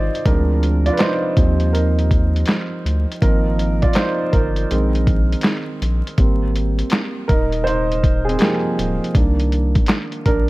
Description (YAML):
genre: lo-fi hip hop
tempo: 81 BPM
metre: 4/4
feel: swing 64% on 16ths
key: unclear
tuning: A4 = 440 Hz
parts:
  - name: warm upright piano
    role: accompaniment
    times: 0.0-10.5 s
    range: Eb3 to D5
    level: -20 LUFS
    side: right 2 dB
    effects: cassette tape, low-pass filter
  - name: saturated sub bass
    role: bass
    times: 0.0-10.5 s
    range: D1 to Eb2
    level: -19 LUFS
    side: equal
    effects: none
  - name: lo-fi sampler-style drum kit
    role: drums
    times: 0.1-10.5 s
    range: handclaps, hi-hat, kick drum, snare drum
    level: -18 LUFS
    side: equal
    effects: vintage 12-bit sampler grit
room: little or no reverb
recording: dark, warm production, vinyl crackle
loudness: -15 LUFS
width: side -20 dB against mid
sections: 0.0-10.5 A section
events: upright piano solo 0.0-10.5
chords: 0.3 Dm7b5; 1.4 Eb69; 3.2 Ab69; 4.7 Bb9sus4; 6.2 Abmaj7; 7.3 Eb69; 9.1 Cm7